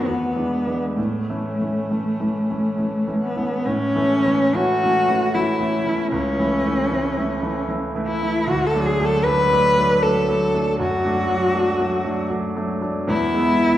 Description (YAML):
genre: classical, romantic duo for cello and grand piano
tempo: 64-80 BPM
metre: 3/4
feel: rubato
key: A major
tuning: A4 = 440 Hz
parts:
  - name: rich cello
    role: melody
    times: 0.0-13.8 s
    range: A3 to B4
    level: -20 LUFS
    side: left 1 dB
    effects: none
  - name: bright grand piano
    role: accompaniment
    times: 0.0-13.8 s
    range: C#2 to E4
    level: -22 LUFS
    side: right 1 dB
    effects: none
room: wet recital hall reverb, RT60 1.8 s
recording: heard from further back in the room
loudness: -18 LUFS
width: side -12 dB against mid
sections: 0.0-3.6 A section; 3.6-13.8 B section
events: none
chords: 0.1 E7; 1.0 A; 6.1 A/C#; 8.5 D; 10.8 D/F#; 13.1 E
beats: 0.07 | 0.97 1.89 2.77 | 3.65 4.54 5.34 | 6.12 6.91 7.69 | 8.47 9.24 10.03 | 10.80 11.55 12.30 | 13.08